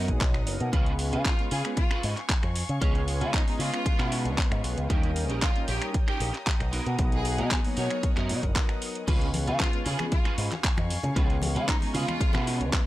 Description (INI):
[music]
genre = nu-disco, nu disco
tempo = 115 BPM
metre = 4/4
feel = straight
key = Db mixolydian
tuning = A4 = 441 Hz
[part]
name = mellow synth brass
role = accompaniment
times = 0.0-12.9 s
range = Gb3 to Eb5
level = -35 LUFS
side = equal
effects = chorus, sidechain pumping
[part]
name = warm studio string section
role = sustained chords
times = 0.0-12.9 s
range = Db5 to Eb6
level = -42 LUFS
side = left 2 dB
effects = sidechain pumping
[part]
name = electric guitar at the edge of break-up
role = riff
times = 0.0-12.6 s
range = Cb4 to Db5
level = -36 LUFS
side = right 3 dB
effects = ensemble chorus
[part]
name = picked electric bass with an envelope filter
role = bass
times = 0.0-12.7 s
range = Gb1 to Db3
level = -29 LUFS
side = equal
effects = none
[part]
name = electronic kick drum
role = drums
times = 0.1-12.8 s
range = none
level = -26 LUFS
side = equal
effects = studio reverb
[part]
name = pop drum kit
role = drums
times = 0.1-12.8 s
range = crash cymbal, finger snaps, handclaps, hi-hat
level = -33 LUFS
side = equal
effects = studio reverb
[part]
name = clear symphonic violin section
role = melody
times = 1.3-12.7 s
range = Eb4 to Db5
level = -36 LUFS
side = equal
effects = tape echo
[part]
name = congas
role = percussion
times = 9.1-12.8 s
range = none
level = -36 LUFS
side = left 2 dB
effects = none
[sound]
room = digital ambience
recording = dry, gritty hardware recording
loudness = -24 LUFS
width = side -16 dB against mid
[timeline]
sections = 0.0-12.9 A section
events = none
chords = 0.0 Cbmaj7; 0.7 Db7; 4.9 Eb7; 6.7 Cbmaj7; 9.1 Db7